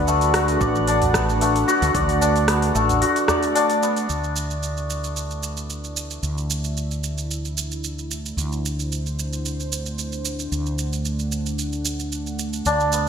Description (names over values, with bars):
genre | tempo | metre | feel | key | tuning
organic downtempo | 112 BPM | 4/4 | swing 53% on 16ths | D mixolydian | A4 = 440 Hz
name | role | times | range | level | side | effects
warm analog pad | sustained chords | 0.0-13.1 s | A3 to F#5 | -28 LUFS | equal | chorus, sidechain pumping
santur | arpeggios | 0.0-8.0, 12.7-13.1 s | A3 to D5 | -22 LUFS | left 1 dB | vintage 12-bit sampler grit, ping-pong delay
mellow fretless electric bass | bass | 0.0-13.1 s | A1 to D2 | -25 LUFS | equal | none
deep house drum kit | drums | 0.1-13.0 s | hi-hat, rim click, shaker | -28 LUFS | right 3 dB | overdrive, studio reverb
electronic kick drum | drums | 0.6-2.1 s | none | -29 LUFS | equal | overdrive, studio reverb
udu | percussion | 1.0-3.4 s | none | -29 LUFS | right 1 dB | none
room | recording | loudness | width
moderate plate reverb, RT60 1.6 s | bright 1980s-style digital production | -20 LUFS | side -7 dB against mid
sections
0.0-4.1 A section; 4.1-13.1 B section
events
filter sweep on analog synth pad 4.1-13.1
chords
0.0 Bm7; 4.1 Dsus2